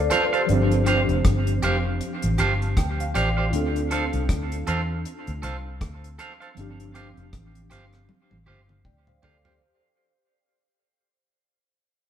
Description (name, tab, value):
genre	lovers rock reggae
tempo	79 BPM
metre	4/4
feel	swing 58% on 16ths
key	unclear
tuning	A4 = 440 Hz
part	mellow tine electric piano	accompaniment	0.0-9.8 s	F3 to A5	-27 LUFS	equal	fast stereo tremolo, tape echo
part	vintage muted fingered electric bass	bass	0.0-9.6 s	F1 to E2	-25 LUFS	equal	none
part	twangy electric guitar	stabs	0.1-9.5 s	G4 to F5	-27 LUFS	right 4 dB	spring reverb, tape echo
part	deep reggae drum kit	drums	0.1-9.6 s	hi-hat, kick drum, rim click, toms	-27 LUFS	left 1 dB	none
room	moderate studio reverb, RT60 0.6 s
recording	band playing live in one room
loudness	-21 LUFS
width	side -9 dB against mid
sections	0.0-9.6 A section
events	fade-out 0.0-9.6; tine electric piano fill 2.0-3.5; drum fill 8.1-9.6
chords	0.5 G7sus4; 3.5 Dm7; 6.6 G7sus4